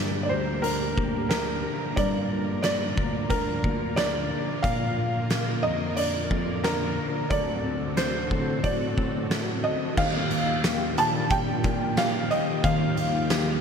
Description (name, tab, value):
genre	dream pop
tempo	90 BPM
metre	4/4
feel	straight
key	G minor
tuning	A4 = 439 Hz
part	felt-muted upright piano	melody	0.0-13.6 s	Bb4 to A5	-28 LUFS	equal	shimmer reverb, ping-pong delay
part	string machine, cellos	sustained chords	0.0-13.6 s	D3 to Bb4	-31 LUFS	equal	ensemble chorus, shimmer reverb
part	mellow electric guitar	arpeggios	0.0-13.6 s	G2 to Bb4	-32 LUFS	left 3 dB	analog chorus, shimmer reverb, ping-pong delay
part	barky tine electric piano	bass	0.0-13.6 s	D2 to Bb2	-33 LUFS	right 1 dB	overdrive, wide subtle chorus
part	oversized low-tuned drum kit	drums	0.6-13.5 s	crash cymbal, hi-hat, kick drum, snare drum, tambourine	-29 LUFS	equal	gated reverb
room	moderate plate reverb, RT60 3.3 s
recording	bright 1980s-style digital production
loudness	-23 LUFS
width	side -6 dB against mid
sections	0.0-10.0 A section; 10.0-13.6 B section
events	none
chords	0.0 Gm; 4.6 Bb; 7.3 D7; 10.0 Ebmaj9